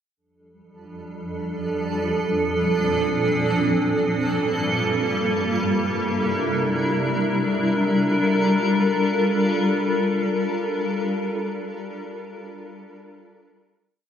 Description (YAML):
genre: hip hop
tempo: free time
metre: none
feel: none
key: G dorian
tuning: A4 = 439 Hz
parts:
  - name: granular cloud pad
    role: solo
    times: 1.0-10.5 s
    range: F2 to Bb4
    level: -20 LUFS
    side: equal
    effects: built-in reverb, digital delay
room: moderate huge ambient reverb, RT60 8.6 s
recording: none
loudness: -20 LUFS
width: side -8 dB against mid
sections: 0.2-6.9 verse; 6.9-10.3 final chord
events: none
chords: 0.2 F6; 1.9 Bbmaj7; 3.6 Gm9; 5.2 C9; 6.9 Gm9